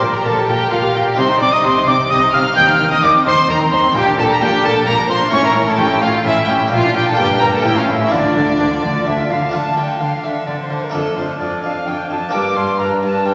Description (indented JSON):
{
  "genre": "classical, baroque-style concerto movement with solo episodes",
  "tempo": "129 BPM",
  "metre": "3/4",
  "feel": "straight",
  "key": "D minor from 3.9 s",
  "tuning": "A4 = 440 Hz",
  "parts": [
    { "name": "mellow hollow silver concert flute", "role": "melody", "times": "0.0-13.3 s", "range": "A4 to G6", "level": "-21 LUFS", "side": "equal", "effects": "none" },
    { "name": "dark chamber viola section", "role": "accompaniment", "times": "0.0-13.3 s", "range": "Bb3 to Bb4", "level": "-24 LUFS", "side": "equal", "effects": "none" },
    { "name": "harpsichord", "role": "accompaniment", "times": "0.0-13.3 s", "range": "F2 to A4", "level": "-24 LUFS", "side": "equal", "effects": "none" },
    { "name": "rich chamber double bass section", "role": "bass", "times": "0.0-9.4 s", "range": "G1 to Eb2", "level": "-28 LUFS", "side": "equal", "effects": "none" },
    { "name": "warm studio cello section", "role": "bass", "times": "0.0-13.3 s", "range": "F2 to Eb3", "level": "-26 LUFS", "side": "equal", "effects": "none" },
    { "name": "warm chamber violin section", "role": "melody", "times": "0.1-13.3 s", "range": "F4 to G6", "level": "-23 LUFS", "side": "equal", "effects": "none" },
    { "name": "rich chamber violin section", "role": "second line", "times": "0.1-13.3 s", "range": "D4 to D6", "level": "-23 LUFS", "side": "equal", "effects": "none" }
  ],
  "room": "wet concert hall reverb, RT60 1.9 s",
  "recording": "nothing above 7.9 kHz",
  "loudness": "-15 LUFS",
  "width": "mono",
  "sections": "0.0-9.5 A section; 9.5-13.3 B section",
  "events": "none",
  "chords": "0.0 Gm/Bb; 1.2 Cm; 2.6 Cm/Eb; 3.9 Gm/Bb; 5.3 A; 6.7 Bb; 7.2 Gm; 7.6 A; 8.1 Dm; 10.9 Dm/F; 12.3 Gm"
}